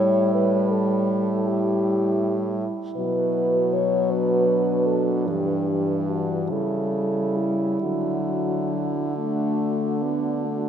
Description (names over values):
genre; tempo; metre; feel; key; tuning
classical, lyrical piece for horn quartet; 44-55 BPM (dotted quarters); 12/8; rubato; D major; A4 = 440 Hz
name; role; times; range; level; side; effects
mellow French horn; melody; 0.0-10.7 s; E4 to C#5; -25 LUFS; left 1 dB; none
mellow French horn; second line; 0.0-10.7 s; D4 to E4; -29 LUFS; right 7 dB; none
dark French horn; accompaniment; 0.0-10.7 s; E3 to B3; -26 LUFS; left 2 dB; none
warm French horn; bass; 0.0-10.7 s; G2 to D3; -27 LUFS; right 2 dB; none
room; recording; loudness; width
wet church reverb, RT60 3.8 s; none; -21 LUFS; side -8 dB against mid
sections
0.0-10.7 A section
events
none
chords
0.0 A7(no3); 3.0 Bm; 5.3 Em7/G; 6.5 A7/C#; 7.8 D